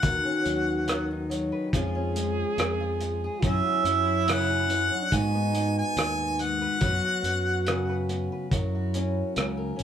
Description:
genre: acoustic folk-pop ballad.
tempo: 71 BPM.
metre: 4/4.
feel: straight.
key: unclear.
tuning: A4 = 439 Hz.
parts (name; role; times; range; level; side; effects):
warm harmonica; melody; 0.0-8.1 s; E5 to G#5; -27 LUFS; right 1 dB; none.
mellow French horn; second line; 0.0-9.7 s; D4 to G#4; -32 LUFS; right 4 dB; none.
fingerpicked steel-string acoustic guitar; accompaniment; 0.0-9.8 s; G#2 to B4; -31 LUFS; left 3 dB; none.
fingered electric bass; bass; 0.0-9.8 s; G#1 to G#2; -30 LUFS; equal; none.
cloth-damped thuddy drum kit; drums; 0.0-9.8 s; hi-hat, kick drum, rim click; -29 LUFS; equal; none.
room: moderate studio reverb, RT60 0.5 s.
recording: band playing live in one room.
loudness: -24 LUFS.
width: side -9 dB against mid.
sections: 0.0-9.8 A section.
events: none.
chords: 0.0 Badd9/D#; 1.7 C#/E#; 3.4 F#sus2; 5.1 G#m7; 6.8 F#sus4; 8.5 F#.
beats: | 0.03 0.88 1.72 2.57 | 3.42 4.27 5.12 5.96 | 6.81 7.66 8.51 9.37.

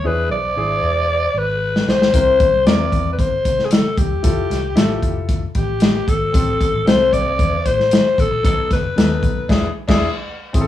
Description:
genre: uptempo 1960s-style soul.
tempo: 114 BPM.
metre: 4/4.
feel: straight.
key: unclear.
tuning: A4 = 441 Hz.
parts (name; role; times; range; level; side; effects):
breathy alto saxophone; melody; 0.0-9.7 s; G4 to D5; -18 LUFS; left 2 dB; none.
warm grand piano; accompaniment; 0.0-10.7 s; B3 to Bb4; -25 LUFS; left 3 dB; none.
vintage muted fingered electric bass; bass; 0.0-10.7 s; E1 to C3; -24 LUFS; left 1 dB; none.
warm soul drum kit; drums; 1.8-10.7 s; crash cymbal, hi-hat, kick drum, snare drum; -17 LUFS; equal; none.
room: wet studio reverb, RT60 0.6 s.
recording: band playing live in one room, small room ambience.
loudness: -14 LUFS.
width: side -12 dB against mid.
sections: 0.0-10.5 A section.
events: drum fill 1.6-2.1; band accent 9.5-10.5.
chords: 0.0 E7; 2.1 C7; 4.2 Fmaj7; 6.3 Am7; 8.4 B7; 9.5 E7.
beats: | 0.05 0.57 1.10 1.62 | 2.14 2.67 3.19 3.71 | 4.24 4.76 5.29 5.81 | 6.34 6.86 7.39 7.91 | 8.44 8.96 9.49 10.02 | 10.54.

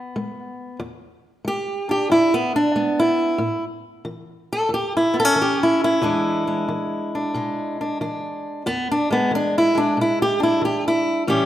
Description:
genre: acoustic country blues, solo or duo.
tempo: 92 BPM.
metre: 4/4.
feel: swing 67% on 8ths.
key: E mixolydian.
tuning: A4 = 443 Hz.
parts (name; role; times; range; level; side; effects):
fingerpicked acoustic archtop guitar; solo; 0.0-11.5 s; E2 to A4; -19 LUFS; equal; none.
room: moderate recital hall reverb, RT60 1.4 s.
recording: none.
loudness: -18 LUFS.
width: side -12 dB against mid.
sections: 0.8-11.5 A section.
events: steel-string acoustic guitar solo 0.8-11.5.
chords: 0.0 E; 0.8 E7; 3.4 A; 6.0 E7.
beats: 0.14 | 0.80 1.45 2.10 2.76 | 3.41 4.06 4.72 5.37 | 6.03 6.68 7.34 7.99 | 8.65 9.30 9.96 10.62 | 11.28.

